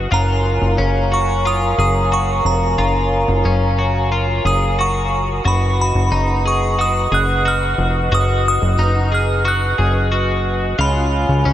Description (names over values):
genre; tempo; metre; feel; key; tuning
dream pop; 90 BPM; 4/4; straight; F# major; A4 = 440 Hz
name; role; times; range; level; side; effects
mellow hollow large flute ensemble; sustained chords; 0.0-11.5 s; C#4 to A#5; -22 LUFS; equal; none
twelve-string electric guitar; arpeggios; 0.0-11.5 s; C#4 to G#4; -22 LUFS; left 2 dB; lush chorus, tape echo
plucky analog bass; bass; 0.0-11.5 s; E#1 to C#2; -18 LUFS; equal; none
glassy synth bell; melody; 0.1-11.5 s; A#5 to F#6; -21 LUFS; right 2 dB; chorus, tremolo, tape echo
room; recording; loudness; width
moderate huge ambient reverb, RT60 8.5 s; dreamy mix soaked in reverb; -14 LUFS; side -12 dB against mid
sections
0.0-11.5 A section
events
none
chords
0.1 F#maj7; 5.5 B; 10.8 C#add9